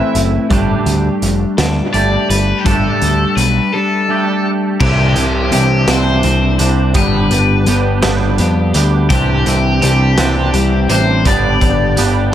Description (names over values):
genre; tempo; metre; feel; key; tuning
indie rock; 56 BPM (dotted quarters); 6/8; straight; C major; A4 = 439 Hz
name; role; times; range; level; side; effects
cranked stack guitar; melody; 0.0-12.3 s; G4 to E5; -18 LUFS; left 4 dB; overdrive, phaser, analog delay
twangy electric guitar; riff; 0.0-12.3 s; A2 to B4; -20 LUFS; right 8 dB; ensemble chorus, analog delay
twelve-string electric guitar; riff; 0.0-12.3 s; G2 to B4; -17 LUFS; left 3 dB; analog delay
growling picked electric bass; bass; 0.1-12.3 s; F1 to F2; -15 LUFS; equal; overdrive
raw garage drum kit; drums; 0.1-12.1 s; crash cymbal, hi-hat, kick drum, snare drum; -18 LUFS; equal; none
room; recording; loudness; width
little or no reverb; echo-heavy mix; -11 LUFS; side -11 dB against mid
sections
0.0-4.8 A section; 4.8-12.3 B section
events
break 3.7-4.8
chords
0.0 Amadd9; 0.5 Gsus2; 4.8 Cadd9; 7.0 G; 9.1 Cadd9; 11.3 G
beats
| 0.50 1.58 | 2.65 3.73 | 4.80 5.88 | 6.95 8.03 | 9.10 10.18 | 11.26 12.33